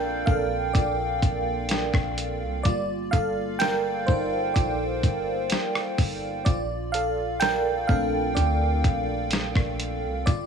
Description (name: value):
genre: contemporary R&B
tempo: 63 BPM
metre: 4/4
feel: straight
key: Bb major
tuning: A4 = 440 Hz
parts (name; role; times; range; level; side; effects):
- FM electric piano with soft pad layer; accompaniment; 0.0-10.5 s; G3 to G5; -25 LUFS; right 1 dB; chorus
- clean 808-style bass; bass; 0.0-10.5 s; G1 to D2; -29 LUFS; equal; none
- dusty soul sampler-style drum kit; drums; 0.3-10.5 s; hi-hat, kick drum, rim click, snare drum; -26 LUFS; equal; none
room: digital ambience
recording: none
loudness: -22 LUFS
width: side -6 dB against mid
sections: 0.0-10.5 A section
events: FM electric piano solo 0.0-10.5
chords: 0.0 Bbmaj9; 2.6 Gm9; 6.5 Bbmaj9